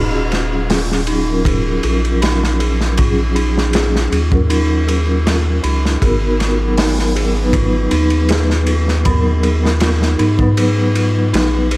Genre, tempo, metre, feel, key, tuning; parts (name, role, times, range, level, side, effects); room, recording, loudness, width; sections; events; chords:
trip hop; 79 BPM; 4/4; straight; Eb minor; A4 = 439 Hz
vibraphone with medium hard mallets; accompaniment; 0.0-11.8 s; Gb3 to Cb5; -19 LUFS; equal; tremolo, low-pass filter, tape echo
dark detuned synth bell; arpeggios; 0.0-11.8 s; Eb4 to Ab4; -22 LUFS; right 1 dB; chorus, phaser, tape echo
round analog bass; bass; 0.0-11.8 s; Eb1 to Ab2; -16 LUFS; equal
crunchy breakbeat drum kit; drums; 0.3-11.8 s; hi-hat, kick drum, ride cymbal, snare drum; -19 LUFS; equal
small room ambience; vinyl crackle; -12 LUFS; side -21 dB against mid
0.0-11.8 A section
filter sweep on vibraphone 0.0-11.8
0.0 Ebm11; 6.0 Abm9